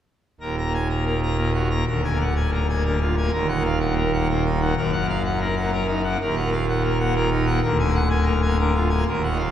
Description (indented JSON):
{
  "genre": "classical, organ toccata",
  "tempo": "125 BPM",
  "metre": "3/4",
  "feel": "straight",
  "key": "Eb minor",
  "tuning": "A4 = 441 Hz",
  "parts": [
    { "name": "pipe organ, full organ", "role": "solo", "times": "0.4-9.5 s", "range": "D1 to Bb5", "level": "-20 LUFS", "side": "equal", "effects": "none" }
  ],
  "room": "wet church reverb, RT60 3.6 s",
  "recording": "heard from further back in the room",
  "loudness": "-20 LUFS",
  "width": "side -10 dB against mid",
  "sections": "0.4-9.5 A section",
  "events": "none",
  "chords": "0.4 Ebm; 1.9 Bb7/D; 3.3 Ebm; 4.8 Ebm/Gb; 6.2 Ebm; 7.6 Bb7/D",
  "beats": "| 0.42 0.90 1.39 | 1.87 2.35 2.84 | 3.32 3.80 4.28 | 4.76 5.24 5.72 | 6.20 6.67 7.15 | 7.63 8.11 8.59 | 9.07"
}